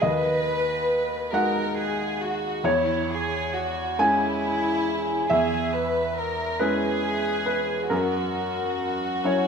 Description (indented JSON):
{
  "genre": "neoclassical piano and strings",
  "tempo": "46 BPM (dotted quarters)",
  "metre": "6/8",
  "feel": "rubato",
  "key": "unclear",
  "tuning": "A4 = 440 Hz",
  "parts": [
    { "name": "warm chamber violin section", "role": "melody", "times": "0.0-9.5 s", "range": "E4 to B4", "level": "-26 LUFS", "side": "equal", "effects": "none" },
    { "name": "felt-muted upright piano", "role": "accompaniment", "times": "0.0-9.5 s", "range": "D#2 to G#5", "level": "-24 LUFS", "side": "equal", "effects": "none" }
  ],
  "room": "wet recital hall reverb, RT60 1.5 s",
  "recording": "recorded in a church or concert hall",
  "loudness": "-22 LUFS",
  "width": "side -6 dB against mid",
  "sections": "0.0-9.5 A section",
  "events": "none",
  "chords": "0.0 G#m7/D#; 2.6 C#m7/E; 7.9 F#7"
}